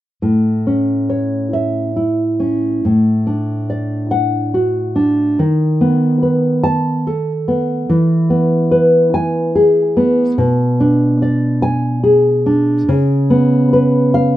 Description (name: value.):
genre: romantic piece for solo classical guitar.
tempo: 71 BPM.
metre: 3/4.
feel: rubato.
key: A major.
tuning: A4 = 440 Hz.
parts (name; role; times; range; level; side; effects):
nylon-string guitar; solo; 0.2-14.4 s; A2 to A5; -12 LUFS; equal; none.
room: light reverb.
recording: rough home demo mix.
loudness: -12 LUFS.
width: side -14 dB against mid.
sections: 0.2-14.4 A section.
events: none.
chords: 0.2 A; 2.8 D/A; 5.4 B7/D#; 7.9 E; 10.4 G#dim/B; 12.9 C#7.